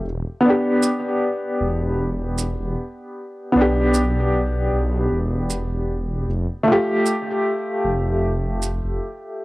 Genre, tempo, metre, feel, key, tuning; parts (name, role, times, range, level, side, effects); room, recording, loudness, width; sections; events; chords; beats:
trip hop; 77 BPM; 4/4; swing 54% on 16ths; E phrygian; A4 = 440 Hz
dark upright piano; accompaniment; 0.0-9.4 s; A3 to G4; -20 LUFS; equal; tremolo, cassette tape, tape echo
dark detuned saw bass; bass; 0.1-9.0 s; E1 to B1; -22 LUFS; equal
maracas; percussion; 0.8-8.8 s; -29 LUFS; right 6 dB
light reverb, small room ambience; home recording on cassette; -19 LUFS; side -20 dB against mid
0.0-9.4 A section
0.0 Em7; 6.3 Fadd9
| 0.05 0.83 1.61 2.38 | 3.16 3.94 4.72 5.50 | 6.28 7.06 7.84 8.62 | 9.40